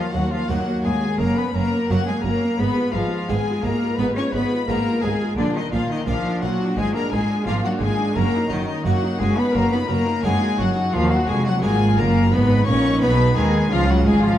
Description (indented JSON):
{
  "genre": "classical, baroque-style concerto movement with solo episodes",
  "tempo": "86 BPM",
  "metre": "4/4",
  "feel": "straight",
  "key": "Eb minor",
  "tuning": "A4 = 440 Hz",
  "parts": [
    { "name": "rich cello", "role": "melody", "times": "0.0-14.4 s", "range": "D3 to Db4", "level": "-22 LUFS", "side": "left 1 dB", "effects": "none" },
    { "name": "rich chamber violin section", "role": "melody", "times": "0.0-14.4 s", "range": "D5 to Db6", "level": "-29 LUFS", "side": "left 6 dB", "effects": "none" },
    { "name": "warm chamber violin section", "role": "second line", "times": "0.0-14.4 s", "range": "D4 to Db5", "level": "-26 LUFS", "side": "left 2 dB", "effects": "none" },
    { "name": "dark chamber viola section", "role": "accompaniment", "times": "0.0-14.4 s", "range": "Gb3 to Ab4", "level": "-31 LUFS", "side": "equal", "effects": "none" },
    { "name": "harpsichord", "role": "accompaniment", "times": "0.0-14.4 s", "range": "Eb2 to Gb4", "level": "-29 LUFS", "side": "equal", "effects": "none" },
    { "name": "warm chamber cello section", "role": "bass", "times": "0.2-14.4 s", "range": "Eb2 to Eb3", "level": "-26 LUFS", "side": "right 2 dB", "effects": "none" },
    { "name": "warm studio double bass section", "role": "bass", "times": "0.2-14.4 s", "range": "F1 to Eb2", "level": "-24 LUFS", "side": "right 2 dB", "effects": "none" }
  ],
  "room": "wet recital hall reverb, RT60 1.8 s",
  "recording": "dark, warm production",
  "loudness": "-18 LUFS",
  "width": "side -12 dB against mid",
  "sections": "0.0-14.4 A section",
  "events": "none",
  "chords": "0.0 Ebm; 1.2 Gb; 2.6 Fdim/Ab; 5.4 Bb; 6.8 Bb7/Ab; 8.2 Ebm/Gb; 10.9 Ebm; 12.3 Abm7; 13.7 Db"
}